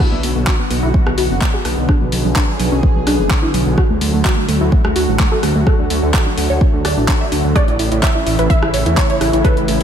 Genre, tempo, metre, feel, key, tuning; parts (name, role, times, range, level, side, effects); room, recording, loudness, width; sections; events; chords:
progressive house; 127 BPM; 4/4; straight; B dorian; A4 = 441 Hz
lush unison pad; sustained chords; 0.0-9.8 s; C#3 to G#4; -20 LUFS; equal; chorus, phaser, sidechain pumping
wide unison pluck; arpeggios; 0.0-9.8 s; F#3 to E5; -20 LUFS; equal; sidechain pumping, tape echo
deep house drum kit; drums; 0.0-9.8 s; crash cymbal, handclaps, hi-hat, rim click; -22 LUFS; equal; sidechain pumping on toms, sidechain pumping on cymbals, sidechain pumping on hats
electronic kick drum; drums; 0.0-9.5 s; -15 LUFS; equal
dark detuned saw bass; bass; 0.1-9.8 s; F#1 to E2; -19 LUFS; equal; sidechain pumping
wide unison pluck; melody; 7.6-9.8 s; B4 to E5; -22 LUFS; right 1 dB; sidechain pumping, tape echo
light reverb, digital ambience; -13 LUFS; side -8 dB against mid
0.0-9.8 A section
filter sweep on synth pluck 0.0-9.8
0.0 Bm; 3.8 D; 7.6 A